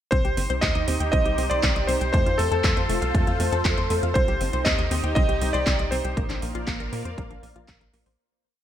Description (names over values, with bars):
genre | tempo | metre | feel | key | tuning
italo disco | 119 BPM | 4/4 | straight | C dorian | A4 = 442 Hz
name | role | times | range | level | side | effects
bright electric grand piano | melody | 0.1-6.4 s | A4 to Eb5 | -27 LUFS | right 1 dB | tape echo
lush unison pad | sustained chords | 0.5-8.2 s | Bb3 to F5 | -30 LUFS | equal | chorus, phaser
analog pluck | arpeggios | 0.1-8.1 s | A3 to G5 | -31 LUFS | left 3 dB | chorus, ping-pong delay
tight sequencer bass | bass | 0.1-8.2 s | F1 to Bb2 | -27 LUFS | equal | none
electronic kick drum | drums | 0.1-7.8 s | none | -25 LUFS | equal | studio reverb
house drum kit | drums | 0.1-8.2 s | handclaps, hi-hat | -30 LUFS | right 1 dB | studio reverb
room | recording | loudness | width
light reverb | none | -21 LUFS | side -10 dB against mid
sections
0.1-8.2 chorus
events
fade-out 5.5-8.2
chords
0.1 Cm; 2.1 F; 4.2 Cm; 6.2 Bbadd9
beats
| 0.12 0.62 1.13 1.63 | 2.14 2.64 3.15 3.65 | 4.15 4.66 5.16 5.67 | 6.17 6.67 7.18 7.68